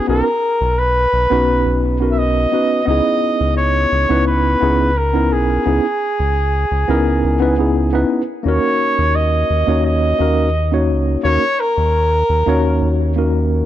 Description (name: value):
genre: sunset chillout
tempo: 86 BPM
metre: 4/4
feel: straight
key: unclear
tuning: A4 = 440 Hz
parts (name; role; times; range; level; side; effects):
- warm flugelhorn; melody; 0.0-13.0 s; G#4 to E5; -18 LUFS; right 1 dB; analog delay
- tine electric piano; accompaniment; 0.0-13.7 s; A#3 to C#5; -18 LUFS; equal; auto-pan, analog delay
- round analog bass; bass; 0.1-13.6 s; B1 to D#2; -18 LUFS; equal; none
room: small room ambience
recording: dry, gritty hardware recording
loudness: -14 LUFS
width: side -12 dB against mid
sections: 0.0-13.7 A section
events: none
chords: 0.0 Bmaj7; 2.9 C#m9; 8.5 D#m7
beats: | 0.08 0.78 1.48 2.18 | 2.88 3.57 4.27 4.97 | 5.67 6.36 7.06 7.76 | 8.46 9.15 9.85 10.55 | 11.25 11.94 12.64 13.34